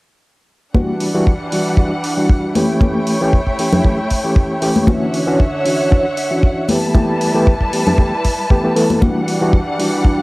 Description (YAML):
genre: nu-disco, nu disco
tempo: 116 BPM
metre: 4/4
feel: swing 53% on 16ths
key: E dorian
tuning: A4 = 440 Hz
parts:
  - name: bright reed electric piano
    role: accompaniment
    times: 0.7-10.2 s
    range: E3 to A4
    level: -17 LUFS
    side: equal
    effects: fast tremolo, sidechain pumping, low-pass filter
  - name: rich symphonic string section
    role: sustained chords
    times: 0.7-10.2 s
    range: D3 to A5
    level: -20 LUFS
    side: equal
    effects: sidechain pumping
  - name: kick drum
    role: drums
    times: 0.7-10.2 s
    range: none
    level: -13 LUFS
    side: equal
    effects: none
  - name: congas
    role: percussion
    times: 0.7-9.1 s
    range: none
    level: -18 LUFS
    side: left 2 dB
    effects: none
  - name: electronic hi-hat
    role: drums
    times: 1.0-9.9 s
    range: none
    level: -28 LUFS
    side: equal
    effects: none
room: light reverb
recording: home recording on cassette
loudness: -13 LUFS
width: side -22 dB against mid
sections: 0.7-10.2 A section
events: filter sweep on reed electric piano 0.7-10.2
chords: 0.7 Em9; 2.6 A7; 4.9 Dmaj9; 6.7 G69; 9.0 Em9